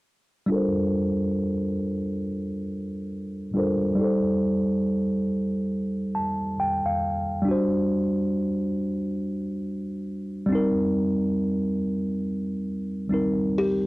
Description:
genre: hip hop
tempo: 69 BPM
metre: 4/4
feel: swing 59% on 16ths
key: G minor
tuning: A4 = 440 Hz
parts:
  - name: tine electric piano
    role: accompaniment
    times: 0.5-13.9 s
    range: G3 to A5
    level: -23 LUFS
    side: equal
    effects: low-pass filter
  - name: buzzing kalimba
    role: melody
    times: 13.6-13.9 s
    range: G4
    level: -23 LUFS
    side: left 2 dB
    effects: low-pass filter
room: moderate small room reverb, RT60 0.5 s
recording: dry, gritty hardware recording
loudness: -23 LUFS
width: side -20 dB against mid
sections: 0.5-13.9 A section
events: filter sweep on tine electric piano 0.5-13.9; tine electric piano fill 5.7-7.5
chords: 0.5 Gm11; 4.0 F9/G; 7.5 D7/G; 10.5 Cm7/G

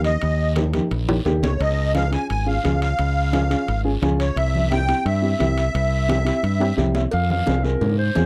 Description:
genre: latin, cumbia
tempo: 174 BPM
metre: 4/4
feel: straight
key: unclear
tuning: A4 = 441 Hz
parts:
  - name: musette accordion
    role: melody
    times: 0.0-6.7 s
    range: Db5 to Ab5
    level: -26 LUFS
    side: equal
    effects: slapback echo
  - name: dark upright piano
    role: accompaniment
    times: 0.0-8.3 s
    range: Bb3 to G5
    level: -27 LUFS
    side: equal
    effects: none
  - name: modern bright fingered electric bass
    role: bass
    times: 0.0-8.3 s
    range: Ab1 to Ab2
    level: -23 LUFS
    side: equal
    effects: none
  - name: guiro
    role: percussion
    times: 0.0-8.3 s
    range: none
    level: -42 LUFS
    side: equal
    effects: none
  - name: timbales and cowbell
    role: percussion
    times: 0.0-8.3 s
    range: none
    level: -32 LUFS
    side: equal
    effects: none
  - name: congas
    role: percussion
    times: 0.2-8.3 s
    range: none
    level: -31 LUFS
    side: equal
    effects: none
  - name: breathy clarinet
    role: second line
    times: 7.0-8.3 s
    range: Bb4 to F5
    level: -27 LUFS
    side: equal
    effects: none
room: little or no reverb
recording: dry, close 1970s-style studio recording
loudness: -21 LUFS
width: mono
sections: 0.0-7.1 A section; 7.1-8.3 B section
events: drum fill 0.7-1.6, 6.6-7.1; upright piano fill 6.4-7.1; clarinet solo 7.1-8.3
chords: 0.0 Eb; 1.6 Db; 4.4 C; 7.1 Fm

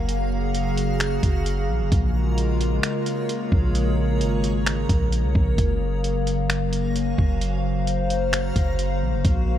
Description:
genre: hip hop, atmospheric cloud-rap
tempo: 131 BPM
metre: 4/4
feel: half-time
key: Gb lydian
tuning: A4 = 440 Hz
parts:
  - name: warbly tape-like pad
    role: sustained chords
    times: 0.0-9.6 s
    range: Db3 to F5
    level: -25 LUFS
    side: left 1 dB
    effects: chorus, built-in reverb, sidechain pumping
  - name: long sustained 808-style bass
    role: bass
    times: 0.0-9.6 s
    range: Gb1 to C2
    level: -24 LUFS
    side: equal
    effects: none
  - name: backwards swelling texture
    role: texture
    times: 0.0-9.6 s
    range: Gb4 to Bb5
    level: -35 LUFS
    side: right 1 dB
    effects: built-in reverb
  - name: trip hop sampler-style drum kit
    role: drums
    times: 0.1-9.4 s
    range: finger snaps, hi-hat, kick drum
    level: -23 LUFS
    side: equal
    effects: none
  - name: riser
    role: sound effects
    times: 9.5-9.6 s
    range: none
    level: barely audible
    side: none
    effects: none
room: little or no reverb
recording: none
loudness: -20 LUFS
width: side -11 dB against mid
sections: 0.0-9.6 A section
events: none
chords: 0.0 Gbmaj7; 1.9 Bbm7; 5.6 Gbmaj7

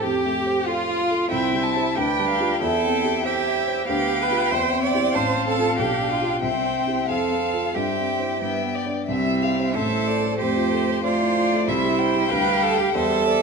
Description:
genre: quick classical-period movement for piano quintet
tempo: 94 BPM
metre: 2/4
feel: rubato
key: C major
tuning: A4 = 439 Hz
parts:
  - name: dark violin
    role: melody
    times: 0.0-13.4 s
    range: F4 to A5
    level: -27 LUFS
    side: left 9 dB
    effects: none
  - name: rich cello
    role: second line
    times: 0.0-13.4 s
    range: C4 to D5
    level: -24 LUFS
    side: right 7 dB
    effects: none
  - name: warm violin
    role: second line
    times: 0.0-13.4 s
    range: F4 to A5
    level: -29 LUFS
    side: left 3 dB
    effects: none
  - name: dark grand piano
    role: accompaniment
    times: 0.0-13.4 s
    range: A1 to F5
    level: -26 LUFS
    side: left 2 dB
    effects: none
  - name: dark viola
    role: accompaniment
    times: 0.0-13.4 s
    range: G3 to G4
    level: -28 LUFS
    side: right 4 dB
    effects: none
room: wet recital hall reverb, RT60 1.4 s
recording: none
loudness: -19 LUFS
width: side -4 dB against mid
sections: 0.0-9.1 A section; 9.1-13.4 A section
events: none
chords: 0.0 F; 1.3 C; 2.0 G7/D; 2.6 C/E; 3.9 G7/D; 4.5 C/E; 5.2 F/A; 5.8 G7/B; 6.4 C; 7.1 F; 7.8 C/G; 8.4 G; 9.1 C; 9.8 Am; 10.4 F; 11.7 C; 12.3 G7/D

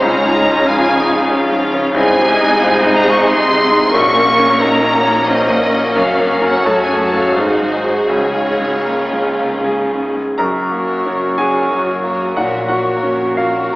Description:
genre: classical, romantic movement for piano and orchestra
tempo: 72-94 BPM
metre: 3/4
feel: rubato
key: Db major, F# major from 10.4 s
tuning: A4 = 438 Hz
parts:
  - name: clear grand piano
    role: melody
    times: 0.0-13.8 s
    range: Bb1 to A#5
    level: -17 LUFS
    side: equal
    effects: none
  - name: rich studio violin section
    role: melody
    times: 0.0-13.8 s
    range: C5 to Db6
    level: -22 LUFS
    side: left 1 dB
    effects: none
  - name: hollow concert flute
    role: second line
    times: 0.0-13.8 s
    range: C5 to Db6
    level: -20 LUFS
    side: equal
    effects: none
  - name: rich studio violin section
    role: second line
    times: 0.0-13.8 s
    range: F4 to F5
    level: -22 LUFS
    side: equal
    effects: none
  - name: warm clarinet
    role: second line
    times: 0.0-13.8 s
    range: F#4 to F5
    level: -21 LUFS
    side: equal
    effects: none
  - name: rich studio viola section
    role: accompaniment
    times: 0.0-13.8 s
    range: F3 to Gb4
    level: -20 LUFS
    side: equal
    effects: none
  - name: warm French horn section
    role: sustained chords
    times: 0.0-13.8 s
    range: F3 to Bb4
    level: -23 LUFS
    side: equal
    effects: none
  - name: clear studio double bass section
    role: bass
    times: 0.0-13.8 s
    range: Gb1 to Db2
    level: -32 LUFS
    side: right 1 dB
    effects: none
  - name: warm studio cello section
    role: bass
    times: 0.0-13.8 s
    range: Gb2 to Db3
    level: -26 LUFS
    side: equal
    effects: none
room: wet scoring stage reverb, RT60 1.8 s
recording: heard from further back in the room, AM radio sound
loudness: -12 LUFS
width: side -20 dB against mid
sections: 0.0-10.4 A section; 10.4-13.8 B section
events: none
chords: 0.0 Db; 2.0 Ab/C; 3.9 Gb/Bb; 6.0 Gbmaj7; 6.6 Gbm; 7.3 Ab7; 8.1 Db; 10.4 F#; 12.4 F#/A#

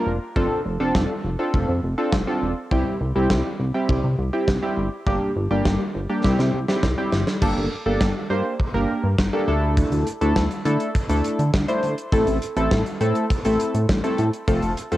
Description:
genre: synth-pop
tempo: 102 BPM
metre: 4/4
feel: straight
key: unclear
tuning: A4 = 440 Hz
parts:
  - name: warm analog keys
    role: accompaniment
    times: 0.0-15.0 s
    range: G3 to C5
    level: -23 LUFS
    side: equal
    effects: chorus, cassette tape
  - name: chorused synth bass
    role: bass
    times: 0.1-15.0 s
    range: E1 to D3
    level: -23 LUFS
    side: equal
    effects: none
  - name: gated 80s drum kit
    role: drums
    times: 0.4-15.0 s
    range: crash cymbal, hi-hat, kick drum, snare drum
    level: -24 LUFS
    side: equal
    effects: cassette tape
room: moderate spring reverb, RT60 2.2 s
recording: home recording on cassette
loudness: -19 LUFS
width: side -15 dB against mid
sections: 0.0-7.4 A section; 7.4-15.0 B section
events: drum fill 6.2-7.4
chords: 0.4 F6; 2.7 C; 5.1 Gm; 6.2 C; 7.4 Gmadd9; 9.5 Dsus2; 12.1 Am

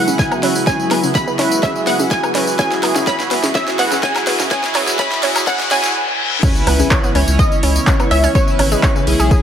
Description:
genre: progressive house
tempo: 125 BPM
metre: 4/4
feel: straight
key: C# minor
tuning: A4 = 437 Hz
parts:
  - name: wide unison pluck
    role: melody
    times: 0.0-9.4 s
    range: C#5 to B5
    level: -20 LUFS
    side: right 1 dB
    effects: sidechain pumping, tape echo
  - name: airy breathy pad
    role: sustained chords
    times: 0.0-9.4 s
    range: C#3 to G#4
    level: -25 LUFS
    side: left 2 dB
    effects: chorus, sidechain pumping
  - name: chorused polysynth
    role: stabs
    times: 0.0-9.4 s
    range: C#4 to C#5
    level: -20 LUFS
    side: right 2 dB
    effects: sidechain pumping, tape echo
  - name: riser, reverse cymbal and impact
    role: sound effects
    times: 1.2-8.3 s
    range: none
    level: -25 LUFS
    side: left 3 dB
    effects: none
  - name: drifting glass-harmonics texture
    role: texture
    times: 0.0-6.0 s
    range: B4 to B5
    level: -34 LUFS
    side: equal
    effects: none
  - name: analog pluck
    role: arpeggios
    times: 0.1-9.4 s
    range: C#3 to G#4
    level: -22 LUFS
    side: equal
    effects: chorus, sidechain pumping, tape echo
  - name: deep house drum kit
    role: drums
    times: 0.1-9.4 s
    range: crash cymbal, handclaps, hi-hat, snare drum, tambourine, woodblock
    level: -21 LUFS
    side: left 1 dB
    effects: overdrive, high-pass filter on hats, small room ambience, high-pass filter on snare, high-pass filter on perc, high-pass filter on cymbals
  - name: electronic kick drum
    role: drums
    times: 0.2-9.4 s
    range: none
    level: -17 LUFS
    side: equal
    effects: overdrive, small room ambience
  - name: round analog bass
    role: bass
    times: 6.7-9.4 s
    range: G#1 to C#2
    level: -16 LUFS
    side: equal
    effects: sidechain pumping
room: moderate lush hall reverb, RT60 2.3 s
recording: high-pass filter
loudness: -13 LUFS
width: side -9 dB against mid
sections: 0.0-6.4 A section; 6.4-9.4 B section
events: build-up 0.0-6.4; drum fill 0.0-6.0; filter sweep on synth arpeggio sound 0.0-6.4; filter sweep on analog polysynth 0.0-6.4; filter sweep 0.0-6.4; riser 1.2-6.0; reverse cymbal 5.5-6.4; stop 6.0-6.4; drop 6.4-9.4; impact 6.4-8.3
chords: 0.0 Eadd9/C#; 6.4 C#m7

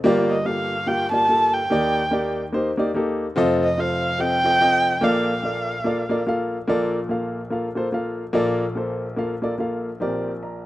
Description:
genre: gospel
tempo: 145 BPM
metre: 4/4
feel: swing 60% on 8ths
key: Bb major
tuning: A4 = 440 Hz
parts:
  - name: warm grand piano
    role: accompaniment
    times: 0.0-10.7 s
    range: F1 to Bb5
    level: -21 LUFS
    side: equal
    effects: none
  - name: dark erhu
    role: melody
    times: 0.3-6.3 s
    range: Eb5 to A5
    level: -21 LUFS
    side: right 1 dB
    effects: none
room: light reverb, studio reverb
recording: rough home demo mix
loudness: -20 LUFS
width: side -16 dB against mid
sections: 0.0-6.7 A section; 6.7-10.0 B section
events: none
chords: 0.1 Gm7; 1.7 Ebmaj7; 3.4 F7; 5.0 Bbmaj7; 10.0 Bb69

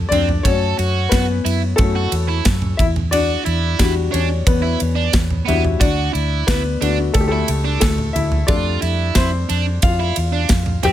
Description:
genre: piano-driven pop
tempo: 90 BPM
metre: 4/4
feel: straight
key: D major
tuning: A4 = 440 Hz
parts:
  - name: warm baby grand piano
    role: accompaniment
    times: 0.0-10.9 s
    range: F3 to G5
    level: -21 LUFS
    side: left 5 dB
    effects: plate reverb
  - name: vintage muted fingered electric bass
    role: bass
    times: 0.0-10.9 s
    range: C#2 to F#2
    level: -20 LUFS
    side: equal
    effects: none
  - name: overdriven electric guitar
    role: riff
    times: 0.1-10.9 s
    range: B3 to A4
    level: -23 LUFS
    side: right 7 dB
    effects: none
  - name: modern studio drum kit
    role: drums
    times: 0.1-10.9 s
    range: kick drum, ride cymbal, snare drum, toms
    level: -20 LUFS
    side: equal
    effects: none
room: light reverb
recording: none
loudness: -15 LUFS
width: side -12 dB against mid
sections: 0.0-10.9 A section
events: grand piano solo 0.0-10.9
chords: 0.4 F#m; 2.8 Em7; 5.8 D; 8.5 Fadd9

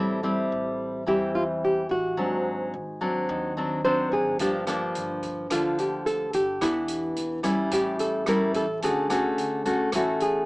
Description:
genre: bossa nova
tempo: 108 BPM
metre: 4/4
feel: straight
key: unclear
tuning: A4 = 437 Hz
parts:
  - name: nylon-string guitar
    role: melody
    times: 0.0-10.5 s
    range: E4 to B#4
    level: -26 LUFS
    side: equal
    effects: none
  - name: nylon-string guitar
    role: accompaniment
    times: 0.0-10.5 s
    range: G2 to G4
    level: -26 LUFS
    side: left 1 dB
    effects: none
  - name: upright bass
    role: bass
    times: 0.0-10.5 s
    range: E1 to E2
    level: -42 LUFS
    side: equal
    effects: none
  - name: open jazz drum kit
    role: drums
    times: 4.4-10.3 s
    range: hi-hat, kick drum, rim click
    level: -36 LUFS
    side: right 1 dB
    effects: none
room: light reverb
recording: small speaker sound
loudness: -23 LUFS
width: side -23 dB against mid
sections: 0.0-10.5 A section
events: none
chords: 0.0 Am7; 2.2 G#7#11; 4.4 Gm7; 6.6 Em7; 7.7 A7; 8.8 Dmaj7

